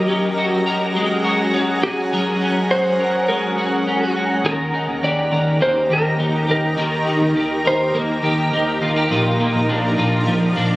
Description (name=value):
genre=dream pop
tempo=103 BPM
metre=4/4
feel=straight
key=unclear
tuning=A4 = 440 Hz
part: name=shimmering ambient pad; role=sustained chords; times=0.0-10.8 s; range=Db4 to D6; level=-22 LUFS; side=equal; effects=chorus, built-in reverb
part: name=electric guitar at the edge of break-up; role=arpeggios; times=0.0-10.8 s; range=Bb2 to Bb4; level=-20 LUFS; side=equal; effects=ensemble chorus, tape echo
part: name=clean lap steel guitar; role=melody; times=1.8-8.5 s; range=Ab4 to D5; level=-21 LUFS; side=equal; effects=tape echo
part: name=vintage muted picked electric bass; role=bass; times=4.4-10.8 s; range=Bb1 to Eb2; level=-24 LUFS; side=equal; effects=none
room=moderate scoring stage reverb, RT60 1.6 s, digital ambience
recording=recorded on a phone in the room, club ambience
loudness=-16 LUFS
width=side -18 dB against mid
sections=0.0-10.8 A section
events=none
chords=0.0 Gbadd9; 4.4 Eb; 9.1 Bb